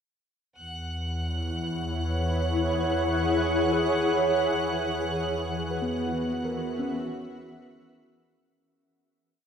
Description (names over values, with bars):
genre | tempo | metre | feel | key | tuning
ambient | 60 BPM | 4/4 | straight | E lydian | A4 = 440 Hz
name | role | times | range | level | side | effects
shimmering ambient pad | sustained chords | 1.5-8.6 s | E3 to F#5 | -26 LUFS | equal | chorus, built-in reverb
warm studio double bass section | bass | 0.6-8.5 s | E2 | -33 LUFS | equal | none
clear studio violin section | texture | 0.6-8.6 s | F#5 to F#6 | -36 LUFS | equal | none
muted felt-like synth keys | arpeggios | 3.7-9.5 s | B3 to C#5 | -32 LUFS | left 1 dB | chorus, tape echo
room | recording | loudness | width
wet plate reverb, RT60 3.5 s | dreamy mix soaked in reverb | -25 LUFS | side -7 dB against mid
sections
0.6-8.6 A section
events
fade-out on double bass section 0.6-8.6; fade-out 4.6-8.6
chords
0.6 F#sus2/E; 4.6 Esus2